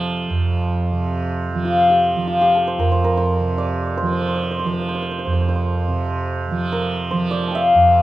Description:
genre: indian classical, Hindustani.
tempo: free time.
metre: none.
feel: none.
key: F raga bilaval.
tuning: A4 = 441 Hz.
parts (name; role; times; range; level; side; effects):
santur; melody; 0.0-8.0 s; F4 to D6; -19 LUFS; left 2 dB; none.
tanpura; drone; 0.0-8.0 s; F2 to F3; -20 LUFS; right 2 dB; none.
room: moderate recital hall reverb, RT60 1.4 s.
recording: dark, warm production.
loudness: -17 LUFS.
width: side -15 dB against mid.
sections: 0.0-8.0 A section.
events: none.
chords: none.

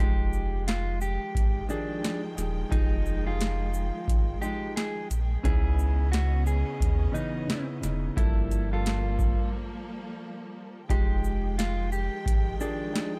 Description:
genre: hip hop, boom-bap hip-hop.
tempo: 88 BPM.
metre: 4/4.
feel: swing 62% on 16ths.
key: unclear.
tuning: A4 = 440 Hz.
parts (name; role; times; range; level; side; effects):
electric guitar at the edge of break-up; melody; 0.0-13.1 s; D4 to Ab4; -38 LUFS; equal; tape echo.
dark concert grand piano; accompaniment; 0.0-13.2 s; G2 to A4; -38 LUFS; equal; cassette tape.
warm symphonic string section; sustained chords; 0.0-13.2 s; Db3 to G5; -42 LUFS; equal; none.
warm sub bass; bass; 0.0-12.5 s; Eb1 to Eb2; -31 LUFS; equal; none.
booming analog drum machine; drums; 0.3-13.1 s; hi-hat, kick drum, shaker, snare drum; -30 LUFS; equal; overdrive.
room: little or no reverb.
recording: dark, warm production.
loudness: -28 LUFS.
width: mono.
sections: 0.0-13.2 A section.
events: break 9.5-10.9.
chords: 0.0 Fm9; 5.4 Dbm9; 8.2 Gm9; 10.9 Fm9.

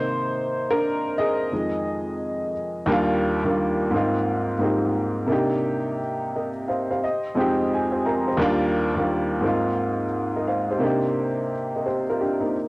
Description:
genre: hip hop.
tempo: 87 BPM.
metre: 4/4.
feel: swing 64% on 16ths.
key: unclear.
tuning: A4 = 441 Hz.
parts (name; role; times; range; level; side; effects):
warm upright piano; solo; 0.0-12.7 s; Eb2 to Bb5; -21 LUFS; equal; cassette tape.
room: light reverb, small room ambience.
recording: dry, gritty hardware recording, transformer saturation, cassette tape.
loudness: -21 LUFS.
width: side -24 dB against mid.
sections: 0.0-2.9 A section; 2.9-12.7 B section.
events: upright piano solo 0.0-2.9; upright piano fill 6.3-8.4.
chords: 0.0 Cm7; 1.5 Fm7; 2.9 Ebmaj7; 3.9 Ab6; 5.3 Cm7; 7.0 Fm7; 8.4 Ebmaj7; 9.4 Ab6; 10.8 Cm7.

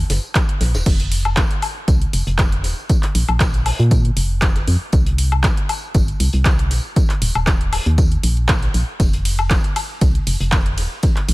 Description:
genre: deep house.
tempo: 118 BPM.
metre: 4/4.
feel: swing 53% on 16ths.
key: unclear.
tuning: A4 = 440 Hz.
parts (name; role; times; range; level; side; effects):
organ-like FM bass; bass; 0.0-11.3 s; Eb1 to Bb2; -18 LUFS; equal; tube saturation, sidechain pumping.
deep house drum kit; drums; 0.1-11.3 s; crash cymbal, handclaps, hi-hat, ride cymbal, woodblock; -23 LUFS; left 1 dB; overdrive.
warm soul drum kit; drums; 0.1-11.3 s; hi-hat, snare drum, tambourine; -32 LUFS; left 1 dB; sidechain pumping on hats, high-pass filter on hats, high-pass filter on snare, sidechain pumping on perc, high-pass filter on perc, high-pass filter on room.
electronic kick drum; drums; 0.4-11.1 s; none; -17 LUFS; equal; overdrive.
room: little or no reverb.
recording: none.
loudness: -15 LUFS.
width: side -20 dB against mid.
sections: 0.0-11.3 A section.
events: none.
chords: none.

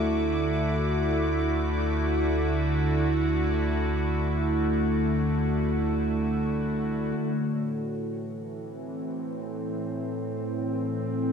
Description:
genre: ambient.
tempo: free time.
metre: none.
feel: none.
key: A dorian.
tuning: A4 = 440 Hz.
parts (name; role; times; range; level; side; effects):
evolving wavetable pad; sustained chords; 0.0-11.3 s; A2 to F#4; -26 LUFS; right 1 dB; chorus, built-in reverb.
warm sub bass; bass; 0.0-7.1 s; D2; -30 LUFS; left 1 dB; none.
analog drone; drone; 0.0-7.3 s; A3 to E4; -35 LUFS; left 1 dB; chorus.
muted chamber violin section; texture; 0.0-7.2 s; D6; -42 LUFS; left 1 dB; none.
room: wet concert hall reverb, RT60 2.2 s.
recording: none.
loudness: -25 LUFS.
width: side -6 dB against mid.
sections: 0.0-7.2 A section; 7.2-11.3 B section.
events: fade-out on violin section 0.0-7.2.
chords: 0.0 Dadd9; 7.2 Am.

